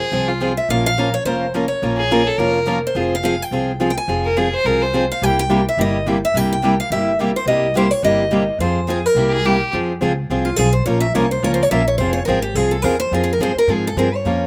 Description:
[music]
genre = acoustic string swing (jazz manouche)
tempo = 212 BPM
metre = 4/4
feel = swing 57% on 8ths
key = F harmonic minor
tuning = A4 = 440 Hz
[part]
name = picked steel-string acoustic guitar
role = melody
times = 0.0-14.5 s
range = F4 to Ab5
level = -22 LUFS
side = equal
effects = none
[part]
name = bright violin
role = second line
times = 0.0-5.0, 9.3-9.7 s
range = F4 to C5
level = -23 LUFS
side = equal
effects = slapback echo
[part]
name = picked steel-string acoustic guitar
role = accompaniment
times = 0.1-14.5 s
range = C3 to Bb4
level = -23 LUFS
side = equal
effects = none
[part]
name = picked steel-string acoustic guitar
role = accompaniment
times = 0.1-14.4 s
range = C3 to Bb4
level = -28 LUFS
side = equal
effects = slapback echo
[part]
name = upright bass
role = bass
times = 0.1-14.5 s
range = F1 to Ab2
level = -26 LUFS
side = equal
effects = none
[sound]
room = little or no reverb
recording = recorded outdoors, with no room sound, faint mains hum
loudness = -18 LUFS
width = mono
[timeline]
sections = 0.0-9.7 A section; 9.7-14.5 B section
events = steel-string acoustic guitar solo 9.7-14.5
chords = 0.0 Fm; 0.7 Bbm; 3.0 Fm; 5.2 C7#9; 8.6 Fm; 9.2 C7; 9.7 Fm; 10.9 Bbm; 12.0 Fm

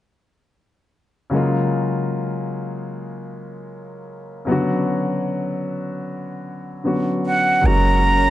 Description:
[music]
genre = R&B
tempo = 76 BPM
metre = 4/4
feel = swing 54% on 16ths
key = F# major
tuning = A4 = 440 Hz
[part]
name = warm concert grand piano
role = accompaniment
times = 1.3-8.3 s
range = C#3 to F#4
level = -22 LUFS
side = left 1 dB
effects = none
[part]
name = breathy concert flute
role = melody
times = 7.3-8.3 s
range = F#5 to A#5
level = -16 LUFS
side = right 1 dB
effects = none
[part]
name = warm analog pad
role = sustained chords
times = 7.6-8.3 s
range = C#4 to F#5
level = -27 LUFS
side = right 3 dB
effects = chorus
[part]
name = warm 808-style bass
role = bass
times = 7.6-8.3 s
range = F#1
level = -17 LUFS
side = right 1 dB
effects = none
[sound]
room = moderate concert hall reverb, RT60 2.0 s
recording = nothing above 10.7 kHz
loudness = -18 LUFS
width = side -14 dB against mid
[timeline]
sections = 1.3-7.6 A section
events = none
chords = 1.3 F#maj7; 4.5 Bmadd9; 7.6 F#

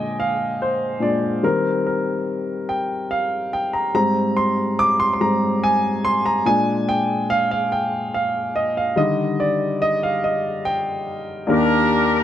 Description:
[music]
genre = gospel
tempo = 48 BPM (dotted quarters)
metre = 6/8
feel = straight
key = Eb major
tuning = A4 = 440 Hz
[part]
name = warm baby grand piano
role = accompaniment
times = 0.0-12.2 s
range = Eb2 to D6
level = -18 LUFS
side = equal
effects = none
[part]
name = clear horn section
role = melody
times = 11.5-12.2 s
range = D4 to Bb4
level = -18 LUFS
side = equal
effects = slapback echo
[sound]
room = light reverb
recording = none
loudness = -18 LUFS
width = side -11 dB against mid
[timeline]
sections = 0.0-11.5 A section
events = grand piano solo 0.0-11.5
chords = 0.0 Bb7; 1.4 Eb6; 3.9 Abmaj7; 6.5 Bb7; 9.0 Ebmaj7

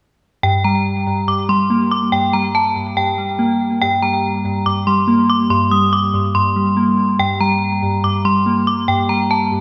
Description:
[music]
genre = hip hop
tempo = 142 BPM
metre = 4/4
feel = half-time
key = G minor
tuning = A4 = 440 Hz
[part]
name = metallic FM bell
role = melody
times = 0.4-9.6 s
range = G5 to Eb6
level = -19 LUFS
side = equal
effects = chorus, low-pass filter, tape echo
[part]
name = glassy digital keys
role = accompaniment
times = 0.4-9.6 s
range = G2 to Bb3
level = -20 LUFS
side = equal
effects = chorus, low-pass filter, tape echo
[sound]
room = moderate plate reverb, RT60 3.1 s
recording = echo-heavy mix, studio reverb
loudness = -16 LUFS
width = mono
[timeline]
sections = 0.4-9.6 A section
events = none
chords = 0.4 Gm

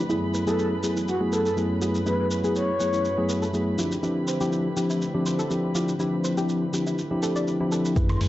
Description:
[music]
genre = deep house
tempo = 122 BPM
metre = 4/4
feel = swing 54% on 16ths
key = unclear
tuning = A4 = 440 Hz
[part]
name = warm analog pad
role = sustained chords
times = 0.0-8.3 s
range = F#2 to G#5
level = -32 LUFS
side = equal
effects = chorus, vintage 12-bit sampler grit, sidechain pumping
[part]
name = warm chamber violin section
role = texture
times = 0.0-8.3 s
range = A3 to B5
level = -39 LUFS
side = equal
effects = none
[part]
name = soft round pluck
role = arpeggios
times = 0.1-8.3 s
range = E4 to D5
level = -33 LUFS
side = equal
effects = chorus, sidechain pumping, tape echo
[part]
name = mellow tine electric piano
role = stabs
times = 0.1-8.3 s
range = F3 to B4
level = -25 LUFS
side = equal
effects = vintage 12-bit sampler grit, sidechain pumping, tape echo
[part]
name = electronic shaker, hi-hat and woodblock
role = drums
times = 0.1-8.3 s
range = none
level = -37 LUFS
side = equal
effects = none
[part]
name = breathy flute-like synth lead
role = melody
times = 0.5-3.2 s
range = F#4 to C#5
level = -28 LUFS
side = left 1 dB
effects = chorus, vintage 12-bit sampler grit, tape echo
[part]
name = round analog bass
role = bass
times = 8.0-8.3 s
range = F#2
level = -24 LUFS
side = equal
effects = sidechain pumping
[part]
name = electronic kick drum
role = drums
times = 8.0-8.1 s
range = none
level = -23 LUFS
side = equal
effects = overdrive
[part]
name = shaker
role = drums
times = 8.0-8.3 s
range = none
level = barely audible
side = none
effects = none
[part]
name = congas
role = percussion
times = 8.1-8.3 s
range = none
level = -31 LUFS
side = left 2 dB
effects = none
[sound]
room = moderate plate reverb, RT60 1.0 s, digital ambience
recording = dark, warm production, nothing above 7.9 kHz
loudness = -22 LUFS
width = side -15 dB against mid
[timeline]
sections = 0.0-8.0 A section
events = filter sweep on synth arpeggio sound 0.0-8.0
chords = 0.1 F#m11; 3.8 Dm11

